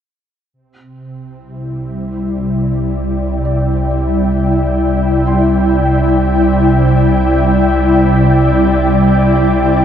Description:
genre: ambient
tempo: free time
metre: none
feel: none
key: C major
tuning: A4 = 439 Hz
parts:
  - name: ethereal airy pad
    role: sustained chords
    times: 1.1-9.8 s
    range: C3 to G5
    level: -12 LUFS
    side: equal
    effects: ensemble chorus, built-in reverb
  - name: deep rumbling drone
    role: bass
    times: 1.9-9.8 s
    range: C2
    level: -18 LUFS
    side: equal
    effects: built-in reverb
  - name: felt-muted upright piano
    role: arpeggios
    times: 3.4-9.8 s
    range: G3 to C6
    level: -30 LUFS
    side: right 1 dB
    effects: none
room: wet huge ambient reverb, RT60 7.3 s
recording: in a vast, echoing space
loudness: -11 LUFS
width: side -9 dB against mid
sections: 0.5-9.8 A section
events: filter sweep on ambient pad 0.5-9.8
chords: 0.5 C

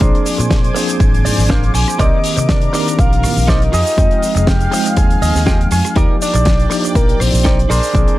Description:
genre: nu-disco, nu disco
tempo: 121 BPM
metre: 4/4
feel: swing 54% on 16ths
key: F dorian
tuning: A4 = 445 Hz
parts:
  - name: soft octave-layered synth lead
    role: melody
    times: 0.0-8.2 s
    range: Bb4 to Ab5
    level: -20 LUFS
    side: equal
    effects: chorus, analog delay
  - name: mellow tine electric piano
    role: accompaniment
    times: 0.0-8.2 s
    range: Eb3 to G5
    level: -20 LUFS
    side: equal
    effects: medium stereo tremolo, sidechain pumping
  - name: lush unison pad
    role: sustained chords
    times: 0.1-8.2 s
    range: Ab3 to D6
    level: -26 LUFS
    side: right 1 dB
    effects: chorus, phaser, sidechain pumping
  - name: direct-recorded clean electric guitar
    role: riff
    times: 0.0-8.2 s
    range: D4 to Ab5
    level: -22 LUFS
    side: right 3 dB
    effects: analog chorus
  - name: fingered electric bass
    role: bass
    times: 0.0-8.0 s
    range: F1 to C3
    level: -16 LUFS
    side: equal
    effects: sidechain pumping
  - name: damped 70s drum kit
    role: drums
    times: 0.0-8.2 s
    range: hi-hat, rim click, shaker, snare drum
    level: -21 LUFS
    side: left 1 dB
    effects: small room reverb
  - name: electronic kick drum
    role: drums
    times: 0.0-8.1 s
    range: none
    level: -14 LUFS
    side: equal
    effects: small room reverb
room: small room ambience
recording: none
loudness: -11 LUFS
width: side -16 dB against mid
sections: 0.0-8.2 A section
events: clean electric guitar fill 1.0-2.0, 5.0-6.0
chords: 0.0 Bb9; 2.0 Cm9; 3.7 Fm9; 6.0 Ebmaj7

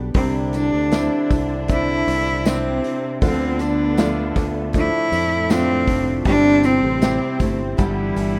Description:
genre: pop ballad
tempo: 79 BPM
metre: 4/4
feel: straight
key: C major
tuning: A4 = 440 Hz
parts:
  - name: bright grand piano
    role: accompaniment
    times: 0.0-8.4 s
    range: C3 to D5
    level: -28 LUFS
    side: equal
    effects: none
  - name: picked steel-string acoustic guitar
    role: arpeggios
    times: 0.0-8.4 s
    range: G2 to A4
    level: -31 LUFS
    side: equal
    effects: none
  - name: fingered electric bass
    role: bass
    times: 0.0-8.4 s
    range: F1 to F2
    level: -27 LUFS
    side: equal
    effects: none
  - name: rich symphonic cello section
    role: second line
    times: 0.1-8.4 s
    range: A2 to E4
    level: -29 LUFS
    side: equal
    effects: tape echo
  - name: modern studio drum kit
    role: drums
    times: 0.1-8.3 s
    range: hi-hat, kick drum, snare drum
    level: -24 LUFS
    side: equal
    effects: none
  - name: rich cello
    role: melody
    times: 0.2-8.4 s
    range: G3 to E4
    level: -23 LUFS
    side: equal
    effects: none
  - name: tambourine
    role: percussion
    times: 0.5-8.3 s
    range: none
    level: -45 LUFS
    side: equal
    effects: none
room: light reverb, small room ambience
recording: rough home demo mix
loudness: -19 LUFS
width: mono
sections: 0.0-8.4 A section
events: none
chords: 0.1 Cadd9; 3.2 Dm; 6.3 C/G; 7.8 G

